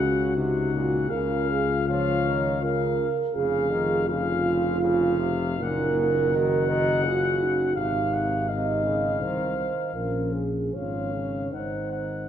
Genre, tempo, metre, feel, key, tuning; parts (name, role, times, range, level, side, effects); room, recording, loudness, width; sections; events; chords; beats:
classical, hymn-like piece for brass band; 81 BPM; 3/4; uneven beats, rubato; Db major; A4 = 440 Hz
warm cornet; melody; 0.0-12.3 s; F5 to Gb5; -31 LUFS; left 7 dB
mellow French horn section; second line; 0.0-12.3 s; F4 to F5; -26 LUFS; right 4 dB
bright trombone; accompaniment; 0.0-12.3 s; Bb2 to F3; -33 LUFS; equal
dark euphonium; accompaniment; 0.0-12.3 s; Db4 to Gb4; -32 LUFS; left 3 dB
mellow tuba; bass; 0.0-12.3 s; F1 to Db2; -29 LUFS; left 2 dB
wet recital hall reverb, RT60 1.4 s; recorded in a church or concert hall; -22 LUFS; side -9 dB against mid
0.0-12.3 A section
0.0 Gb/Db; 1.1 Db; 3.3 Db/F; 5.6 Ebm/Gb; 7.8 Ab; 9.9 Bbm7; 10.7 Db/Ab; 11.5 Ab7
0.36 | 1.11 1.89 2.62 | 3.35 4.08 4.81 | 5.60 6.33 7.04 | 7.76 8.49 9.21 | 9.95 10.74 11.53